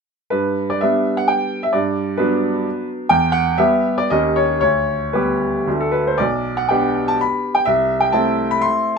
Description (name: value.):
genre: classical, romantic triple-time dance for piano with dotted rhythms.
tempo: 110-137 BPM.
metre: 3/4.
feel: rubato.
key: G major.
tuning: A4 = 441 Hz.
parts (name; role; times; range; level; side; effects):
bright baby grand piano; solo; 0.3-9.0 s; B1 to C6; -16 LUFS; equal; none.
room: moderate studio reverb, RT60 0.6 s.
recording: dark, warm production.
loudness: -16 LUFS.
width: side -5 dB against mid.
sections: 0.3-9.0 A section.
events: none.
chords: 0.3 G; 1.7 Bm/G; 3.1 Em; 4.1 Eb7; 4.6 G/D; 5.7 D; 6.2 G/B; 7.7 Am/C.